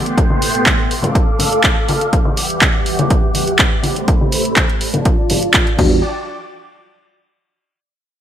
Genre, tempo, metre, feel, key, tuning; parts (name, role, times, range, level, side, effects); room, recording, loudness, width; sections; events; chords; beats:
filtered disco house; 123 BPM; 4/4; straight; E phrygian; A4 = 440 Hz
string machine, full ensemble; sustained chords; 0.0-6.0 s; E3 to D6; -19 LUFS; equal; ensemble chorus, sidechain pumping, low-pass filter
punchy analog drum machine; drums; 0.1-5.9 s; crash cymbal, handclaps, hi-hat; -17 LUFS; right 1 dB; sidechain pumping on hats, sidechain pumping on cymbals
tambourine and congas; percussion; 0.1-6.0 s; -22 LUFS; left 2 dB; sidechain pumping on perc, low-pass filter on perc
electronic kick drum; drums; 0.2-5.9 s; -15 LUFS; equal
bell-like tine electric piano; accompaniment; 5.8-6.0 s; E3 to F#4; -19 LUFS; equal; medium stereo tremolo, phaser, sidechain pumping, low-pass filter
fingered electric bass; bass; 5.8-6.0 s; E2; -18 LUFS; equal; sidechain pumping, low-pass filter
light reverb; -12 LUFS; side -10 dB against mid
0.0-6.0 A section; 6.0-8.0 B section
filter sweep 0.0-6.0
0.0 Am9; 0.9 F6; 2.1 Em9; 3.8 Am9; 4.8 F6; 5.8 Em9; 6.0 N.C.
| 0.18 0.67 1.15 1.64 | 2.13 2.62 3.10 3.59 | 4.08 4.57 5.05 5.54